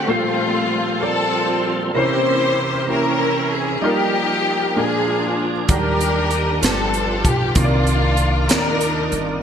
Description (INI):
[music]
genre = slow gospel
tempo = 64 BPM (dotted quarters)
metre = 6/8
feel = straight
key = unclear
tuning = A4 = 442 Hz
[part]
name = clear studio string section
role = melody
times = 0.0-9.4 s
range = A3 to C5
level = -20 LUFS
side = left 2 dB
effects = none
[part]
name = warm concert grand piano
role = accompaniment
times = 0.0-9.4 s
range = G2 to D5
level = -22 LUFS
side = equal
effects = analog chorus
[part]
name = tonewheel organ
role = sustained chords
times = 0.0-9.4 s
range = Bb2 to D5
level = -26 LUFS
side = right 3 dB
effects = slow rotary speaker, overdrive, chorus vibrato
[part]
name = upright bass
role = bass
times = 5.7-9.4 s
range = G1 to Eb2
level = -22 LUFS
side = equal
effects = none
[part]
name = crisp fusion drum kit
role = drums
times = 5.7-9.3 s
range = hi-hat, kick drum, snare drum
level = -20 LUFS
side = right 1 dB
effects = gated reverb
[sound]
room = moderate plate reverb, RT60 3.7 s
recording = bright 1980s-style digital production, lossy compression artefacts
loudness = -16 LUFS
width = side -8 dB against mid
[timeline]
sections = 0.0-9.4 A section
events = none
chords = 0.1 Gm11/Bb; 1.9 C7b9; 3.8 F9sus4; 4.8 Bb7; 5.7 Ebmaj7; 6.6 G7; 7.6 Cm11